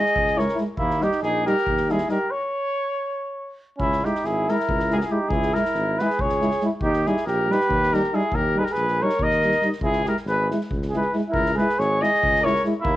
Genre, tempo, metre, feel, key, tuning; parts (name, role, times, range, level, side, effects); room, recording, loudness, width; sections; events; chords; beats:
balkan folk, Balkan brass band; 279 BPM (eighths); 7/8; straight; C# dorian sharp4; A4 = 439 Hz
warm trumpet; melody; 0.0-13.0 s; E4 to D#5; -23 LUFS; left 1 dB
mellow flugelhorn; second line; 0.0-13.0 s; A#3 to A#4; -26 LUFS; right 2 dB
dark euphonium; accompaniment; 0.0-12.7 s; G3 to G#3; -28 LUFS; right 2 dB
street-band drum kit; percussion; 0.1-13.0 s; kick drum, snare drum; -32 LUFS; equal; cassette tape
warm tuba; bass; 0.2-13.0 s; G#1 to D#2; -28 LUFS; equal
warm trombone; accompaniment; 0.3-12.7 s; D#4 to E4; -30 LUFS; left 4 dB
moderate spring reverb, RT60 1.3 s, studio ambience; home recording on cassette; -20 LUFS; side -14 dB against mid
0.0-3.8 A section; 3.8-13.0 A section
stop 2.3-3.8
0.0 C#m; 0.8 D#; 2.3 N.C.; 3.8 C#m; 6.8 D#; 9.8 C#m
0.13 0.34 0.56 | 0.78 0.99 1.21 1.43 1.64 1.86 2.07 | 2.29 2.50 2.72 2.94 3.15 3.37 3.58 | 3.80 4.01 4.23 4.44 4.66 4.87 5.09 | 5.30 5.52 5.73 5.95 6.16 6.38 6.59 | 6.81 7.02 7.24 7.45 7.67 7.88 8.10 | 8.31 8.53 8.74 8.96 9.17 9.39 9.60 | 9.82 10.03 10.25 10.46 10.68 10.89 11.11 | 11.32 11.54 11.76 11.97 12.19 12.40 12.62 | 12.84